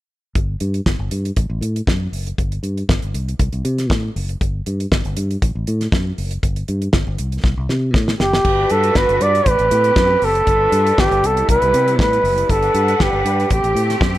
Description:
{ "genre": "disco", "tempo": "119 BPM", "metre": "4/4", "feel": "straight", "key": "unclear", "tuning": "A4 = 440 Hz", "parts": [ { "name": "fingered electric bass", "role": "bass", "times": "0.4-14.2 s", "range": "F#1 to C3", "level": "-21 LUFS", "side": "equal", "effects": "none" }, { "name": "damped 70s drum kit", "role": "drums", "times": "0.4-14.2 s", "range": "crash cymbal, hi-hat, kick drum, snare drum", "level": "-19 LUFS", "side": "equal", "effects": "none" }, { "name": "breathy flugelhorn", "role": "melody", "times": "8.2-14.0 s", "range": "G4 to D5", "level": "-15 LUFS", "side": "right 1 dB", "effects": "tape echo" }, { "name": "clear studio string section", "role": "sustained chords", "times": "8.4-14.2 s", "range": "C3 to F#5", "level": "-23 LUFS", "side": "equal", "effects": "none" } ], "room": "light reverb, studio reverb", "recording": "none", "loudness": "-15 LUFS", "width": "side -15 dB against mid", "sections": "0.4-8.5 A section; 8.5-14.2 B section", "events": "drum fill 7.4-8.5", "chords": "0.4 N.C.; 1.4 F#m; 2.4 N.C.; 3.1 F#dim; 4.4 N.C.; 5.4 F#m; 6.4 N.C.; 7.2 F#dim; 8.5 Gmaj7; 9.5 Am9; 10.5 G7; 11.2 Cmaj7; 12.5 Gmaj7; 13.5 Am7", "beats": "| 0.36 0.86 1.37 1.88 | 2.38 2.89 3.39 3.90 | 4.41 4.91 5.42 5.92 | 6.43 6.93 7.44 7.95 | 8.45 8.96 9.46 9.97 | 10.47 10.98 11.48 11.99 | 12.49 13.00 13.51 14.01" }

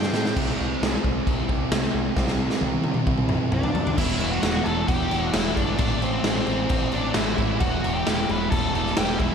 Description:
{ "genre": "quiet-loud alternative rock", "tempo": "132 BPM", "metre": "4/4", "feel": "straight", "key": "unclear", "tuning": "A4 = 439 Hz", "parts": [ { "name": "octave-fuzz lead guitar", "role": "melody", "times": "0.0-0.3, 3.5-9.3 s", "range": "C4 to G5", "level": "-30 LUFS", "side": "equal", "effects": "distortion, slapback echo, analog delay" }, { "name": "fuzz guitar", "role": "riff", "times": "0.0-9.3 s", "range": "A2 to E4", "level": "-26 LUFS", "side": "right 1 dB", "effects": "distortion, slapback echo" }, { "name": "growling picked electric bass", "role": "bass", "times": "0.0-9.3 s", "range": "E1 to C3", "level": "-30 LUFS", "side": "equal", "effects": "overdrive" }, { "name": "raw garage drum kit", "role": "drums", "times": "0.0-9.3 s", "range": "crash cymbal, kick drum, snare drum, toms", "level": "-24 LUFS", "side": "equal", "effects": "none" } ], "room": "light reverb, small room ambience", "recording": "none", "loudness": "-21 LUFS", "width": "side -7 dB against mid", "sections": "0.4-4.0 A section; 4.0-9.3 B section", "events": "drum fill 0.0-0.4, 2.2-4.0", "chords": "0.4 C; 4.0 Em; 5.8 Am; 7.6 Em", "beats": "| 0.36 0.81 1.27 1.72 | 2.17 2.63 3.08 3.53 | 3.99 4.44 4.89 5.35 | 5.80 6.25 6.71 7.16 | 7.61 8.07 8.52 8.97" }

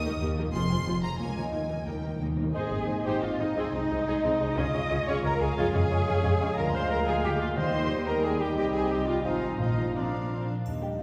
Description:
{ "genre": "classical, dramatic, fast romantic movement for symphony orchestra", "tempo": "179 BPM", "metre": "3/4", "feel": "straight", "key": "Ab major", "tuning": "A4 = 442 Hz", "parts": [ { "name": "rich studio violin section", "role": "melody", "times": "0.0-11.0 s", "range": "Bb3 to Eb6", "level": "-44 LUFS", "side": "equal", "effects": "none" }, { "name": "concert harp", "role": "arpeggios", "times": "0.0-11.0 s", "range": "Ab2 to Eb5", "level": "-37 LUFS", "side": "equal", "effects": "none" }, { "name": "warm studio double bass section", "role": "bass", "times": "0.0-11.0 s", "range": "F1 to F2", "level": "-35 LUFS", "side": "equal", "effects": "none" }, { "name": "warm symphonic cello section", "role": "bass", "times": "0.0-11.0 s", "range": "Db2 to Eb5", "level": "-35 LUFS", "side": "equal", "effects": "none" }, { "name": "timpani", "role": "percussion", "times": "0.0-2.5, 7.6-10.1 s", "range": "Bb2 to Eb3", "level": "-38 LUFS", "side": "equal", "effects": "none" }, { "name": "rich symphonic violin section", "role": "second line", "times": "0.1-11.0 s", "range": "Ab4 to Eb6", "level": "-42 LUFS", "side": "equal", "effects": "none" }, { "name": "rich symphonic viola section", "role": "accompaniment", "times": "0.1-11.0 s", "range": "F3 to C5", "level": "-38 LUFS", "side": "equal", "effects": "none" }, { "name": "mellow hollow silver concert flute", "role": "second line", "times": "2.5-11.0 s", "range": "Eb5 to Bb5", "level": "-42 LUFS", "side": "equal", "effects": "none" }, { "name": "warm clarinet", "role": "second line", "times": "2.5-10.5 s", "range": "C5 to F5", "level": "-43 LUFS", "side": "equal", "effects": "none" }, { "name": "warm cor anglais", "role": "second line", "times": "2.5-10.3 s", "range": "C4 to Eb5", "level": "-40 LUFS", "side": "equal", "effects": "none" }, { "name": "mellow bassoon", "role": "accompaniment", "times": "2.5-10.5 s", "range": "F3 to Ab3", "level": "-40 LUFS", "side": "equal", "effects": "none" }, { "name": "mellow French horn section", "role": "sustained chords", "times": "2.5-11.0 s", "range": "F3 to F4", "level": "-37 LUFS", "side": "equal", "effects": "none" }, { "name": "triangle", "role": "percussion", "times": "10.7-11.0 s", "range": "none", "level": "-59 LUFS", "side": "equal", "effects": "none" } ], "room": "wet scoring stage reverb, RT60 2.0 s", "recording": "heard from further back in the room", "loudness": "-28 LUFS", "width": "mono", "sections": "0.0-2.5 A section; 2.5-10.7 B section", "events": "timpani fill 1.5-2.5", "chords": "0.0 Eb7; 0.5 Fm; 1.2 Bbm/Db; 1.5 Eb; 2.5 Ab; 3.6 Ab/C; 4.6 Db; 5.6 Db/F; 6.6 Bb7/D; 7.6 Eb; 8.6 Cm; 9.2 Fm/Ab; 9.6 Bb", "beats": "0.22 | 0.54 0.87 1.19 | 1.53 1.87 2.21 | 2.54 2.89 3.23 | 3.57 3.90 4.24 | 4.58 4.91 5.24 | 5.58 5.91 6.24 | 6.57 6.91 7.24 | 7.57 7.91 8.24 | 8.57 8.91 9.25 | 9.60 9.96 10.31 | 10.66 10.99" }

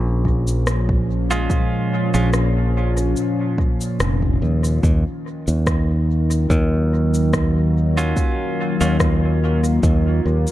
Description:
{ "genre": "ambient dub", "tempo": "72 BPM", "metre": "4/4", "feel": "swing 54% on 16ths", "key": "Eb minor", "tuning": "A4 = 445 Hz", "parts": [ { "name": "warm analog pad", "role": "sustained chords", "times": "0.0-10.5 s", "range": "Bb2 to F4", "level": "-23 LUFS", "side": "left 1 dB", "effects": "chorus" }, { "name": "fingered electric bass", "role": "bass", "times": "0.0-10.5 s", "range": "F1 to Eb2", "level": "-18 LUFS", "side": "equal", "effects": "none" }, { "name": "electronic kick drum", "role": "drums", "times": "0.2-10.0 s", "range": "none", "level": "-20 LUFS", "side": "equal", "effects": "overdrive" }, { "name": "electronic shaker and rim click", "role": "drums", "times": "0.5-10.5 s", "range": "none", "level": "-28 LUFS", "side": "left 1 dB", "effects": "dub echo" }, { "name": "clean electric guitar", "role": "stabs", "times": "1.3-2.3, 8.0-9.0 s", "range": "Gb3 to F4", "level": "-27 LUFS", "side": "right 3 dB", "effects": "dub echo" } ], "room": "digital ambience", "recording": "dark, warm production", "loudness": "-16 LUFS", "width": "side -14 dB against mid", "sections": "0.0-4.8 A section; 4.8-10.5 B section", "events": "none", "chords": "0.0 Bbm7; 4.8 Ebm9", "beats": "0.67 | 1.50 2.33 3.17 4.00 | 4.83 5.67 6.50 7.33 | 8.17 9.00 9.84" }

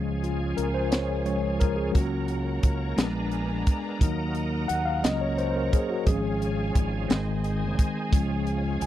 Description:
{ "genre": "slow gospel", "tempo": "58 BPM (dotted quarters)", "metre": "6/8", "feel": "straight", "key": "Db major", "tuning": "A4 = 439 Hz", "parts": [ { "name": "mellow tine electric piano", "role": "accompaniment", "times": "0.0-8.9 s", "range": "Eb3 to Ab5", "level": "-28 LUFS", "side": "left 2 dB", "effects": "medium stereo tremolo" }, { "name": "bright tonewheel organ", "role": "sustained chords", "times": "0.0-8.9 s", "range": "Eb3 to Bb4", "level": "-36 LUFS", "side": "right 2 dB", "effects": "slow rotary speaker, overdrive, chorus vibrato" }, { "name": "warm studio string section", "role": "sustained chords", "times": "0.0-8.9 s", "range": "Cb4 to Bb5", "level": "-38 LUFS", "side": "equal", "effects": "none" }, { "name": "fingered electric bass", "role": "bass", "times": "0.0-8.9 s", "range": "Ab1 to Eb2", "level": "-30 LUFS", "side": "equal", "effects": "none" }, { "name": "crisp fusion drum kit", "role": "drums", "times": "0.2-8.9 s", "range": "hi-hat, kick drum, snare drum", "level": "-23 LUFS", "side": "equal", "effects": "none" } ], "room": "little or no reverb", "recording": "dry, close 1970s-style studio recording", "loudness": "-24 LUFS", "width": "side -12 dB against mid", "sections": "0.0-8.9 A section", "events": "tine electric piano solo 0.0-8.9", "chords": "0.0 Db; 2.0 Gb/Db; 3.0 Bb7b9; 4.0 Ebm; 5.0 Gb/Db; 6.1 Db/Ab; 7.1 Ab; 8.1 Db", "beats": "0.93 | 1.96 2.99 | 4.02 5.05 | 6.08 7.11 | 8.13" }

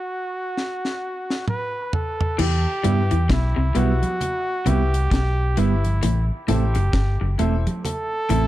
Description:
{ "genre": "roots reggae", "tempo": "66 BPM", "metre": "4/4", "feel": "swing 60% on 16ths", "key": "E minor", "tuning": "A4 = 440 Hz", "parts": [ { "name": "warm flugelhorn", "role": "melody", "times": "0.0-8.5 s", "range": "E4 to B4", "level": "-27 LUFS", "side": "right 1 dB", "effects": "dub echo" }, { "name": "deep reggae drum kit", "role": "drums", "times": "0.6-8.5 s", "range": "crash cymbal, hi-hat, kick drum, snare drum, toms", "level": "-25 LUFS", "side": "equal", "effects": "none" }, { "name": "electric guitar through a small old amp", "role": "riff", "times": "2.4-8.5 s", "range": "E2 to G3", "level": "-29 LUFS", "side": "left 6 dB", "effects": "none" }, { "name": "vintage muted fingered electric bass", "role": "bass", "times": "2.4-8.5 s", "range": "E1 to G2", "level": "-20 LUFS", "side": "equal", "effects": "none" }, { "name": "congas", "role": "percussion", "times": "2.4-8.5 s", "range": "none", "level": "-30 LUFS", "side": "right 2 dB", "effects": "none" }, { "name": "mellow electric guitar", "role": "accompaniment", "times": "2.8-8.5 s", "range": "G3 to E4", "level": "-26 LUFS", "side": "right 7 dB", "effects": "dub echo" }, { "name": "warm upright piano", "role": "stabs", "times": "2.8-8.5 s", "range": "E4 to E5", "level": "-32 LUFS", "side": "left 8 dB", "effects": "none" } ], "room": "small room ambience", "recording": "dark, warm production", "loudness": "-19 LUFS", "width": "side -14 dB against mid", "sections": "0.0-2.4 A section; 2.4-8.5 B section", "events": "stop 0.0-2.4; drum fill 0.6-2.4", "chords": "0.0 N.C.; 2.4 Em; 6.0 Am", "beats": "0.56 1.47 | 2.38 3.29 4.21 5.12 | 6.03 6.93 7.84" }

